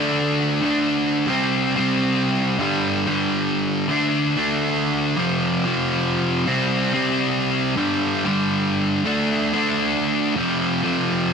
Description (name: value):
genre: punk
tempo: 185 BPM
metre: 4/4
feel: straight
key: unclear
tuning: A4 = 439 Hz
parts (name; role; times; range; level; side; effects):
- sludgy distorted guitar; solo; 0.0-11.3 s; F2 to D4; -18 LUFS; equal; overdrive, ping-pong delay
room: light reverb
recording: none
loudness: -18 LUFS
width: side -6 dB against mid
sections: 0.0-1.3 A section; 1.3-11.3 B section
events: none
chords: 0.0 D5; 1.3 C5; 2.6 G5; 3.9 D5; 5.2 F5; 6.5 C5; 7.8 G5; 9.1 D5; 10.4 F5